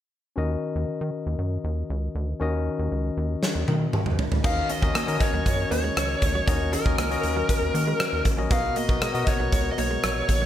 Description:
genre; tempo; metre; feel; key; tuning
1980s-style pop; 118 BPM; 4/4; straight; Eb minor; A4 = 440 Hz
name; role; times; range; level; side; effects
barky tine electric piano; accompaniment; 0.4-10.5 s; B2 to Eb5; -29 LUFS; left 4 dB; none
rubbery square bass; bass; 0.4-10.5 s; A1 to Eb3; -28 LUFS; equal; none
big rock drum kit; drums; 3.4-10.4 s; crash cymbal, hi-hat, kick drum, rim click, snare drum, toms; -25 LUFS; equal; gated reverb
direct-recorded clean electric guitar; riff; 4.4-10.5 s; Gb3 to Eb4; -35 LUFS; right 6 dB; wide subtle chorus, digital delay
bluesy overdriven lead guitar; melody; 4.5-10.5 s; Bb4 to F5; -28 LUFS; right 1 dB; distortion, digital delay
room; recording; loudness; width
light reverb, small room ambience; none; -22 LUFS; side -11 dB against mid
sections
0.4-4.4 A section; 4.4-10.5 B section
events
drum fill 3.4-4.4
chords
0.4 Ebm7; 8.5 Bmaj7

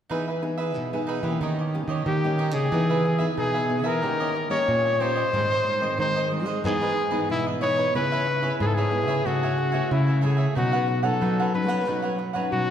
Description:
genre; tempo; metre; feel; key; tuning
samba; 92 BPM; 4/4; straight; E major; A4 = 439 Hz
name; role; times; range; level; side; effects
cavaquinho; accompaniment; 0.1-12.7 s; D#4 to G#5; -31 LUFS; right 3 dB; none
nylon-string guitar; accompaniment; 0.1-12.7 s; G#2 to G#4; -30 LUFS; left 2 dB; none
nylon-string guitar; bass; 0.1-12.7 s; G#2 to B3; -26 LUFS; equal; none
warm trumpet; melody; 2.1-12.7 s; E4 to C#5; -25 LUFS; left 1 dB; none
room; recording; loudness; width
wet church reverb, RT60 2.8 s; recorded in a church or concert hall; -22 LUFS; side -9 dB against mid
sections
0.1-2.7 A section; 2.7-12.7 B section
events
none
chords
0.1 Emaj7; 1.4 D#7; 2.7 Emaj7; 4.0 D#7; 5.3 G#; 6.6 Emaj7/G#; 7.9 C#m7; 9.3 Amaj7/C#; 10.6 Badd9

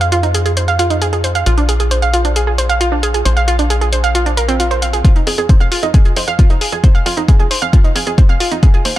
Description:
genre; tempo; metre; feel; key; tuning
uplifting trance; 134 BPM; 4/4; straight; F dorian; A4 = 441 Hz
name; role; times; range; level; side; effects
analog pluck; arpeggios; 0.0-9.0 s; C4 to F5; -16 LUFS; right 3 dB; chorus, sidechain pumping, digital delay
tight sequencer bass; bass; 0.0-9.0 s; Bb1 to F2; -17 LUFS; equal; sidechain pumping, high-pass filter
electronic hi-hat; drums; 0.0-9.0 s; none; -22 LUFS; left 2 dB; high-pass filter on hats
electronic kick drum; drums; 5.0-8.7 s; none; -9 LUFS; equal; none
room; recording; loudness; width
light reverb, digital ambience; dark, warm production; -11 LUFS; side -14 dB against mid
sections
0.0-5.0 A section; 5.0-9.0 B section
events
build-up 5.0-9.0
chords
0.0 Fm; 1.5 Bb5; 5.0 Fm7

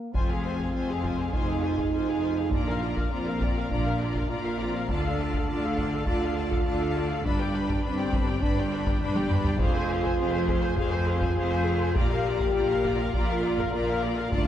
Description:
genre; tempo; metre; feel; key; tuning
cinematic, epic orchestral film score; 102 BPM; 4/4; straight; F dorian; A4 = 440 Hz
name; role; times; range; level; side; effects
mellow French horn section; sustained chords; 0.0-14.5 s; Bb3 to Bb4; -29 LUFS; equal; none
rich symphonic viola section; accompaniment; 0.1-14.5 s; D4 to C5; -34 LUFS; equal; none
clear symphonic cello section; bass; 0.1-14.5 s; D2 to D3; -33 LUFS; right 1 dB; none
rich symphonic double bass section; bass; 0.1-14.5 s; F1 to D2; -33 LUFS; right 1 dB; none
taiko ensemble; drums; 0.1-14.5 s; none; -30 LUFS; equal; none
rich symphonic violin section; melody; 0.2-14.5 s; F5 to B5; -38 LUFS; left 3 dB; none
clear symphonic violin section; second line; 0.2-14.5 s; Ab4 to F5; -35 LUFS; left 4 dB; none
room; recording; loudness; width
wet concert hall reverb, RT60 1.9 s; heard from further back in the room; -24 LUFS; side -11 dB against mid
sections
0.2-14.5 A section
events
break 0.0; drum fill 9.0-9.6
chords
0.2 Fm; 2.5 Bb; 4.9 Dm; 7.2 G; 9.6 Fm; 12.0 Bb

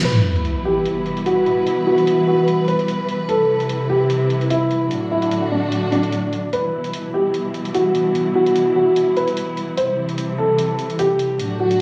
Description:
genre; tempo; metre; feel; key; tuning
heavy wobble dubstep; 148 BPM; 4/4; swing 54% on 16ths, half-time; E minor; A4 = 440 Hz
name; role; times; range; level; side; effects
dark baby grand piano; melody; 0.0-11.8 s; D4 to C5; -21 LUFS; equal; dub echo
warm studio string section; sustained chords; 0.0-11.8 s; A2 to B4; -24 LUFS; equal; none
dubstep drum kit; drums; 0.0-11.8 s; crash cymbal, hi-hat; -28 LUFS; equal; overdrive, low-pass filter on snare, low-pass filter on hats, low-pass filter on cymbals
sub drop; sound effects; 0.0-1.7 s; none; -23 LUFS; equal; none
room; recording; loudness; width
wet digital room reverb, RT60 1.1 s; studio reverb; -19 LUFS; mono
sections
0.0-11.8 A section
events
impact 0.0-1.7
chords
0.0 Em; 3.3 C; 4.9 D; 6.5 Em; 9.8 C

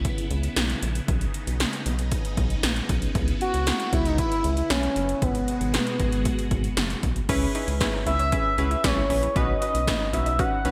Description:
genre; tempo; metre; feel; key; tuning
synth-pop; 116 BPM; 4/4; straight; C# minor; A4 = 441 Hz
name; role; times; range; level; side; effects
phased string machine; sustained chords; 0.0-7.3 s; B2 to F#4; -36 LUFS; equal; ensemble chorus, phaser
rubbery square bass; bass; 0.0-10.7 s; F#1 to C#2; -29 LUFS; equal; none
80s electronic pad drums; drums; 0.0-10.7 s; crash cymbal, hi-hat, kick drum, snare drum; -29 LUFS; equal; gated reverb
expressive synth lead; melody; 3.4-10.7 s; B3 to F#5; -28 LUFS; equal; chorus, digital delay
warm analog keys; accompaniment; 7.3-10.7 s; C#4 to B4; -31 LUFS; equal; chorus
unison pluck; arpeggios; 7.3-10.7 s; C#4 to G#4; -38 LUFS; equal; none
room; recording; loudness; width
moderate lush hall reverb, RT60 2.3 s; bright 1980s-style digital production; -24 LUFS; mono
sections
0.0-7.3 A section; 7.3-10.7 B section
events
none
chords
0.0 C#m7; 1.1 Badd9; 3.2 C#m7; 5.2 G#m7; 7.3 C#m7

